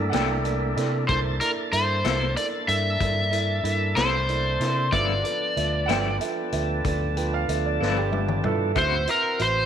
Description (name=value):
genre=slow blues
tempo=63 BPM (dotted quarters)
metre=12/8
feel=straight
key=unclear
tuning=A4 = 440 Hz
part: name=bright upright piano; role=second line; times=0.0-8.8 s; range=E4 to G5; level=-31 LUFS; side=right 10 dB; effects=none
part: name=dark upright piano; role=accompaniment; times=0.0-9.6 s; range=E4 to G5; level=-31 LUFS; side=right 10 dB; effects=none
part: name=tonewheel organ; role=sustained chords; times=0.0-9.7 s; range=F3 to A5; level=-31 LUFS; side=equal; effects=slow rotary speaker
part: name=fingered electric bass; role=bass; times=0.0-9.7 s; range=G1 to C3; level=-27 LUFS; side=equal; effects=none
part: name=electric guitar at the edge of break-up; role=accompaniment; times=0.1-9.0 s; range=G2 to B4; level=-32 LUFS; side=left 12 dB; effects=tremolo
part: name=vintage drum kit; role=drums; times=0.1-9.5 s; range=hi-hat, kick drum, snare drum, toms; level=-31 LUFS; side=left 4 dB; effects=none
part: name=overdriven slide guitar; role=melody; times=1.1-9.7 s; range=Bb4 to E5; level=-24 LUFS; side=left 1 dB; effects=none
room=moderate echo chamber reverb, RT60 1.8 s, small room ambience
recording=1960s-style stereo with parts hard left and right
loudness=-22 LUFS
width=side -9 dB against mid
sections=0.0-9.7 A section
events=drum fill 7.8-8.8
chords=0.0 C13; 4.9 G13; 8.8 D13